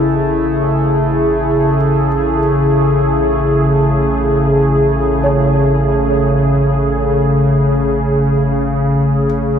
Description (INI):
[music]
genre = ambient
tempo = free time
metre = none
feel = none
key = unclear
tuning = A4 = 440 Hz
[part]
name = warm analog pad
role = sustained chords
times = 0.0-9.6 s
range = C#3 to G#4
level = -13 LUFS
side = equal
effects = wide subtle chorus
[part]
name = felt-muted upright piano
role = arpeggios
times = 0.0-9.6 s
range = B4 to E5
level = -25 LUFS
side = right 1 dB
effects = diffuse ambient delay
[part]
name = round analog bass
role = bass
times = 0.0-9.6 s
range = A1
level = -22 LUFS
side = right 1 dB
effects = none
[part]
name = analog drone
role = drone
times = 0.0-9.6 s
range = A3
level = -22 LUFS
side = right 1 dB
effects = chorus
[sound]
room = wet huge ambient reverb, RT60 7.8 s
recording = in a vast, echoing space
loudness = -12 LUFS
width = side -8 dB against mid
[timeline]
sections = 0.0-9.6 A section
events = none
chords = 0.0 C#m/A